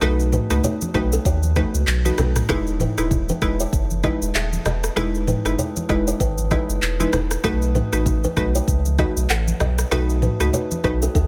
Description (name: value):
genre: afrobeats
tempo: 97 BPM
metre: 4/4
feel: swing 58% on 16ths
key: E major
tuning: A4 = 440 Hz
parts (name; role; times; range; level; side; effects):
- glassy wavetable pluck; accompaniment; 0.0-11.1 s; G#3 to B4; -27 LUFS; equal; chorus
- buzzing kalimba; riff; 0.0-11.2 s; B3 to F#5; -30 LUFS; equal; delay
- warm sub bass; bass; 0.0-11.3 s; D#1 to D#2; -24 LUFS; equal; none
- afro-pop drum kit; drums; 0.0-11.3 s; handclaps, kick drum, rim click, shaker, toms; -26 LUFS; equal; none
- congas; percussion; 0.0-10.8 s; none; -31 LUFS; equal; none
room: little or no reverb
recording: none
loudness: -21 LUFS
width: mono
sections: 0.0-11.3 A section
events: none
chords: 0.0 B7; 2.5 Emaj7; 7.4 B7